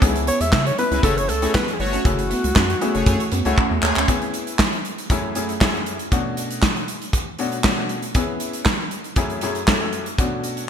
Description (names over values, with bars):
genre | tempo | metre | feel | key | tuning
early-eighties boogie funk | 118 BPM | 4/4 | straight | F# minor | A4 = 439 Hz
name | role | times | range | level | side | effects
clear concert grand piano | accompaniment | 0.0-10.7 s | F#2 to B4 | -25 LUFS | left 3 dB | lush chorus
rubbery square bass | bass | 0.0-4.1 s | F#1 to C#3 | -23 LUFS | equal | none
modern studio drum kit | drums | 0.0-10.7 s | handclaps, hi-hat, kick drum, snare drum | -21 LUFS | equal | gated reverb
electric guitar at the edge of break-up | riff | 0.2-4.1 s | G#3 to C#4 | -30 LUFS | right 7 dB | wide subtle chorus
breathy alto saxophone | melody | 0.3-3.6 s | F#4 to E5 | -24 LUFS | equal | none
analog synth brass | second line | 0.9-4.0 s | G#3 to C#5 | -28 LUFS | left 1 dB | chorus
room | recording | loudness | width
moderate lush hall reverb, RT60 2.0 s, small room reverb | bright 1980s-style digital production | -18 LUFS | side -8 dB against mid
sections
0.0-4.1 A section; 4.1-10.7 B section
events
drum fill 3.6-4.1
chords
0.0 C#m7; 1.0 F#m7; 2.0 F#m9; 4.1 C#m7; 5.1 F#m7; 6.1 Bm9; 8.2 C#m7; 9.2 F#m7; 10.2 Bm9